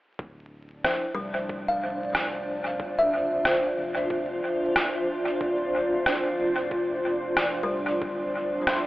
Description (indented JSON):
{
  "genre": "ambient dub",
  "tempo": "92 BPM",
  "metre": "4/4",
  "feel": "straight",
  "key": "D minor",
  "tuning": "A4 = 441 Hz",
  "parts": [
    { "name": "granular cloud pad", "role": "sustained chords", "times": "1.3-8.9 s", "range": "D4 to D5", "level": "-27 LUFS", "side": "equal", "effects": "built-in reverb" },
    { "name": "soft dub sub bass", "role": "bass", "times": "0.2-8.8 s", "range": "D1 to F1", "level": "-46 LUFS", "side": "equal", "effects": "tube saturation" },
    { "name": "electronic kick drum", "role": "drums", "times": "0.2-8.2 s", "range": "none", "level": "-39 LUFS", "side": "equal", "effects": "none" },
    { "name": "filtered dub chord stab", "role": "stabs", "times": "0.8-8.9 s", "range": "F3 to C5", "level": "-32 LUFS", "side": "equal", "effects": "phaser, lush chorus, dub echo" },
    { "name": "electronic rim click", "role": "drums", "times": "0.8-8.8 s", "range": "none", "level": "-28 LUFS", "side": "equal", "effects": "dub echo" },
    { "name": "kalimba", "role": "arpeggios", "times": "1.1-8.9 s", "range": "G3 to F5", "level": "-31 LUFS", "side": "left 1 dB", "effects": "dub echo" }
  ],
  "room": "moderate huge ambient reverb, RT60 9.0 s",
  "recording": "vinyl crackle, telephone sound",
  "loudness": "-24 LUFS",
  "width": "side -17 dB against mid",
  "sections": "0.2-8.9 A section",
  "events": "none",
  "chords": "0.2 Dm9"
}